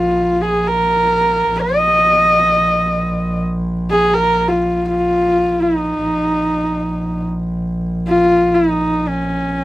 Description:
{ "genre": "mongolian traditional, Mongolian folk", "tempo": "free time", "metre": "none", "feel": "none", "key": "Bb yu mode", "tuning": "A4 = 440 Hz", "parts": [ { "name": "rich horsehead fiddle", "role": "melody", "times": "0.0-9.6 s", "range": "Db4 to Eb5", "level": "-14 LUFS", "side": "equal", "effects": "none" }, { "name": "clear double bass", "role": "drone", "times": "0.0-9.6 s", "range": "Bb1", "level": "-21 LUFS", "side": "equal", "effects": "none" } ], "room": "light reverb", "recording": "none", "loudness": "-14 LUFS", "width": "side -15 dB against mid", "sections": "0.0-9.6 A section", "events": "none", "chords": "none" }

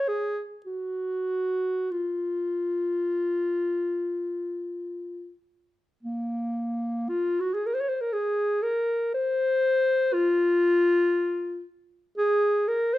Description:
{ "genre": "classical, free, expressive piece for unaccompanied clarinet", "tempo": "36-60 BPM", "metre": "3/4", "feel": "rubato", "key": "unclear", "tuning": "A4 = 440 Hz", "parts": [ { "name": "mellow clarinet", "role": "solo", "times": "0.0-13.0 s", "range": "Bb3 to Db5", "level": "-24 LUFS", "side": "left 1 dB", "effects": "none" } ], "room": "moderate large studio reverb, RT60 1.0 s", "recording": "none", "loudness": "-24 LUFS", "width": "side -15 dB against mid", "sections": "0.0-6.0 A section; 6.0-13.0 B section", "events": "none", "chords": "none" }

